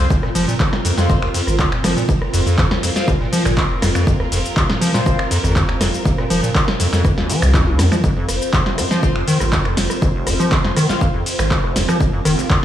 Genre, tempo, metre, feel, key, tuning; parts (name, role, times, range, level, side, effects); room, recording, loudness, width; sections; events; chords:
acid house; 121 BPM; 4/4; straight; F minor; A4 = 438 Hz
string machine, full ensemble; sustained chords; 0.0-12.6 s; C4 to C5; -24 LUFS; right 1 dB; phaser, ensemble chorus, sidechain pumping
acid bass, square; riff; 0.0-12.6 s; F1 to F3; -20 LUFS; equal; overdrive, wide subtle chorus, vintage 12-bit sampler grit, sidechain pumping, tape echo
band-passed chord stab; stabs; 0.0-5.2, 8.9-11.0 s; C4 to F5; -27 LUFS; left 3 dB; phaser, vintage 12-bit sampler grit, tape echo
warm sub bass; bass; 0.0-12.4 s; F1 to F2; -21 LUFS; equal; tube saturation, sidechain pumping
electro analog drum machine; drums; 0.1-12.6 s; finger snaps, handclaps, hi-hat, ride cymbal, rim click, shaker, snare drum, toms; -21 LUFS; equal
electronic kick drum; drums; 0.1-12.6 s; -18 LUFS; equal; overdrive
light reverb, digital ambience; studio reverb; -14 LUFS; side -11 dB against mid
0.0-8.0 A section; 8.0-12.6 A section
drop 0.0-8.0, 8.0-12.6; drum fill 7.5-8.0
0.0 F5